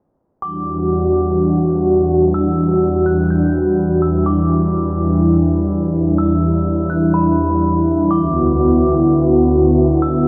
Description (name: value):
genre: hip hop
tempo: 125 BPM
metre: 4/4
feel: half-time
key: E minor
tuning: A4 = 440 Hz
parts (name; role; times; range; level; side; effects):
- metallic FM bell; melody; 0.4-10.3 s; B5 to G6; -29 LUFS; equal; chorus, tape echo
- airy breathy pad; sustained chords; 0.4-10.3 s; D2 to F#4; -15 LUFS; equal; chorus
room: little or no reverb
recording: dry, gritty hardware recording, transformer saturation, cassette tape, low-pass filter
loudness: -15 LUFS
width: mono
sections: 0.4-10.3 A section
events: none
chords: 0.4 Em9; 8.1 D69